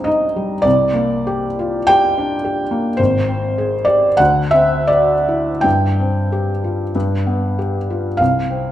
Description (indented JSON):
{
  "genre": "classical, romantic nocturne for solo piano",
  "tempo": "39-56 BPM",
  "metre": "4/4",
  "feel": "rubato",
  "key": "unclear",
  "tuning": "A4 = 440 Hz",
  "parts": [
    { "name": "felt-muted upright piano", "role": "solo", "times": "0.0-8.7 s", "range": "Ab1 to G5", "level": "-14 LUFS", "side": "equal", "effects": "none" }
  ],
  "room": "wet recital hall reverb, RT60 1.4 s",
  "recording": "none",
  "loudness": "-14 LUFS",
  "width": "side -12 dB against mid",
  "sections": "0.0-8.7 A section",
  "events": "none",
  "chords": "0.0 Cm; 0.7 Gm/C; 3.0 Ab; 4.2 D7; 5.6 C5/G; 6.9 G; 8.2 N.C."
}